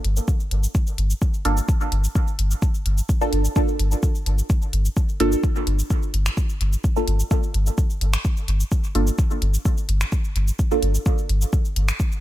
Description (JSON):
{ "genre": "dub techno", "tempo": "128 BPM", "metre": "4/4", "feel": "straight", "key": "G minor", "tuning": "A4 = 444 Hz", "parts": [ { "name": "pure sine sub bass", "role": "bass", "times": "0.0-11.9 s", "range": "G1", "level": "-20 LUFS", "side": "equal", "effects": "tube saturation, sidechain pumping" }, { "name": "deep house drum kit", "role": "drums", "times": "0.0-12.2 s", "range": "finger snaps, hi-hat, shaker", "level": "-30 LUFS", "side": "left 1 dB", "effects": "dub echo" }, { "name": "electronic kick drum", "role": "drums", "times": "0.3-12.1 s", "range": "none", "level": "-21 LUFS", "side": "equal", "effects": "none" }, { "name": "filtered dub chord stab", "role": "stabs", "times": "1.5-10.9 s", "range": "Bb3 to A4", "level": "-26 LUFS", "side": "right 2 dB", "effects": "chorus, phaser, sidechain pumping, dub echo" } ], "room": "little or no reverb", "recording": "none", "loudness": "-19 LUFS", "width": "side -14 dB against mid", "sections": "0.0-12.2 A section", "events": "none", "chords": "0.0 Gm9" }